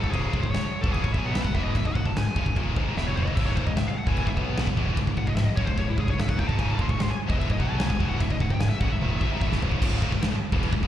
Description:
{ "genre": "heavy metal", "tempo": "149 BPM", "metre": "4/4", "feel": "straight", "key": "C# minor", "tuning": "A4 = 441 Hz", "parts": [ { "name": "high-gain lead guitar", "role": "melody", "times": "0.0-9.5 s", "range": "E4 to C#6", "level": "-34 LUFS", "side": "left 2 dB", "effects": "distortion, slapback echo, ping-pong delay" }, { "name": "heavy high-gain guitar", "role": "riff", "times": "0.0-10.9 s", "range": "C#2 to B3", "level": "-32 LUFS", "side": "left 8 dB", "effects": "distortion, slapback echo" }, { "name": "heavy high-gain guitar", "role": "riff", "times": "0.0-10.9 s", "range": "C#2 to B3", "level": "-34 LUFS", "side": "right 8 dB", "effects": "distortion" }, { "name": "heavy high-gain guitar", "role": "riff", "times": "0.0-10.9 s", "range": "C#2 to B3", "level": "-32 LUFS", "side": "equal", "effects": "distortion, slapback echo" }, { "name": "growling fingered electric bass", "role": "bass", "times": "0.0-10.9 s", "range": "C#1 to B1", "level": "-30 LUFS", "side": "equal", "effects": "overdrive" }, { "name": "big rock drum kit", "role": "drums", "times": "0.0-10.9 s", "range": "crash cymbal, kick drum, snare drum, splash cymbal, toms", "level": "-26 LUFS", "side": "equal", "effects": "none" } ], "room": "little or no reverb", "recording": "live gig heard through the venue's PA, recital hall reverb", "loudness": "-23 LUFS", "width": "side -11 dB against mid", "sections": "0.0-9.8 A section; 9.8-10.9 B section", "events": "lead electric guitar solo 0.0-9.8; drum fill 3.0-3.4, 9.0-9.8", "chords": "0.0 C#m" }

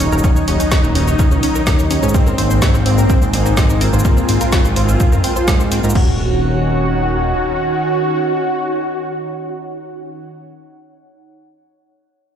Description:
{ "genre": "melodic techno", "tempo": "126 BPM", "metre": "4/4", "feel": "straight", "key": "Eb dorian", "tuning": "A4 = 440 Hz", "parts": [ { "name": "wide unison lead", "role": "melody", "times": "0.0-10.3 s", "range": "C4 to Gb4", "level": "-21 LUFS", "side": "equal", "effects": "lush chorus, sidechain pumping, digital delay" }, { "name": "lush unison pad", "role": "sustained chords", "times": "0.0-10.3 s", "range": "Eb3 to Gb4", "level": "-22 LUFS", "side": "equal", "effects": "chorus, sidechain pumping" }, { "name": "wide unison pluck", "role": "arpeggios", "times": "0.0-6.2 s", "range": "C4 to Db6", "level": "-24 LUFS", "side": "equal", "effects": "sidechain pumping, digital delay" }, { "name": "fat analog bass", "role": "bass", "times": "0.0-7.3 s", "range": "Eb1 to Ab2", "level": "-17 LUFS", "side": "equal", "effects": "sidechain pumping" }, { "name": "deep house drum kit", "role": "drums", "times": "0.0-6.1 s", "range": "crash cymbal, hi-hat, shaker, snare drum", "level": "-23 LUFS", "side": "equal", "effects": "none" }, { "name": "warbly tape-like pad", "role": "texture", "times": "0.0-10.5 s", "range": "C4 to Ab5", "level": "-27 LUFS", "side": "left 1 dB", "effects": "chorus, built-in reverb, sidechain pumping" }, { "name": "electronic kick drum", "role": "drums", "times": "0.2-6.1 s", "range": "none", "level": "-16 LUFS", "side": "equal", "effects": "none" } ], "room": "light reverb", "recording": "played on a big sound system in a bare room, large studio reverb", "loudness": "-13 LUFS", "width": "side -9 dB against mid", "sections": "0.0-6.0 A section; 6.0-9.8 B section", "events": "drop 0.0-6.0", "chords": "0.0 Ebm7; 2.1 Abadd9; 6.0 Ebm7" }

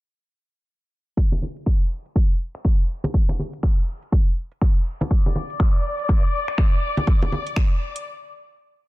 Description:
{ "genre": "deep house", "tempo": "122 BPM", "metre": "4/4", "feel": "swing 60% on 16ths", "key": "unclear", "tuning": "A4 = 440 Hz", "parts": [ { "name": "electronic kick drum", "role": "drums", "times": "1.2-7.7 s", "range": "none", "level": "-18 LUFS", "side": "equal", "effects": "none" }, { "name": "house drum kit", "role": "drums", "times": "1.2-8.0 s", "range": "finger snaps, hi-hat", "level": "-35 LUFS", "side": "equal", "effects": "soft clipping on snare" }, { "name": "congas", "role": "percussion", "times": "1.3-7.4 s", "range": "none", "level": "-26 LUFS", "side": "equal", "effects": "none" }, { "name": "muted studio violin section", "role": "texture", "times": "5.1-8.1 s", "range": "D5 to D6", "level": "-28 LUFS", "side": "left 3 dB", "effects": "none" } ], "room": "studio ambience", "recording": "dense, heavily limited modern master, low-pass filter", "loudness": "-19 LUFS", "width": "side -19 dB against mid", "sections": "1.2-8.9 A section", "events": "filter sweep 1.2-8.9; stop 8.1-8.9", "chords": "none" }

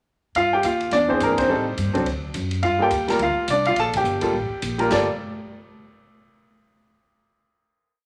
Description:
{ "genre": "jazz piano trio", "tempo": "211 BPM", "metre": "4/4", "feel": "swing 60% on 8ths", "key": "G minor", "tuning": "A4 = 440 Hz", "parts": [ { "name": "swinging big-band drum kit", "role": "drums", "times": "0.3-5.0 s", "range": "crash cymbal, hi-hat, kick drum, ride cymbal, snare drum", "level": "-35 LUFS", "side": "equal", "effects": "none" }, { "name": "clear concert grand piano", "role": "melody", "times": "0.4-5.1 s", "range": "E3 to A5", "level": "-22 LUFS", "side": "equal", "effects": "none" }, { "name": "upright bass", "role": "bass", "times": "0.4-5.1 s", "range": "G1 to A2", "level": "-31 LUFS", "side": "equal", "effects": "none" } ], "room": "moderate large studio reverb, RT60 1.5 s", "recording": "none", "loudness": "-22 LUFS", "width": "mono", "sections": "0.4-4.9 A section; 4.9-6.0 final chord", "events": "band accent 1.3, 3.9", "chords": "0.4 Ebadd9; 0.9 Eaug7; 1.5 Am7b5; 2.1 D; 2.6 Gm9; 4.9 N.C." }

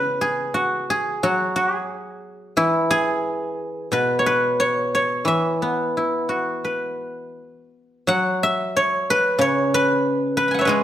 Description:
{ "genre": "chinese traditional, Chinese solo plucked strings", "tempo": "80-95 BPM", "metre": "4/4", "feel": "rubato", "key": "E gong mode", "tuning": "A4 = 438 Hz", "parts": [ { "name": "guzheng", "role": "solo", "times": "0.0-10.8 s", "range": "B2 to B5", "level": "-19 LUFS", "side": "equal", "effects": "none" } ], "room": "moderate recital hall reverb, RT60 1.3 s", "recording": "none", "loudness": "-19 LUFS", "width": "side -11 dB against mid", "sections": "0.0-8.1 A section; 8.1-10.8 B section", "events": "none", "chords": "none" }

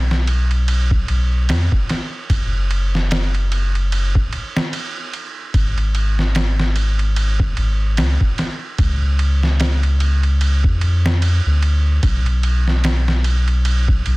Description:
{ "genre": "trip hop", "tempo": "74 BPM", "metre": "4/4", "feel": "swing 57% on 16ths", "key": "unclear", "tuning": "A4 = 437 Hz", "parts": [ { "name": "soft dub sub bass", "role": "bass", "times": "0.0-14.2 s", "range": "F#1 to E#2", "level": "-16 LUFS", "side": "equal", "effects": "none" }, { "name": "trip hop sampler-style drum kit", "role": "drums", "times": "0.1-14.2 s", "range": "kick drum, ride cymbal, snare drum", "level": "-21 LUFS", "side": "equal", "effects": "none" } ], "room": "little or no reverb", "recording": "dense, heavily limited modern master", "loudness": "-15 LUFS", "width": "side -23 dB against mid", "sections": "0.0-14.2 A section", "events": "none", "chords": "none" }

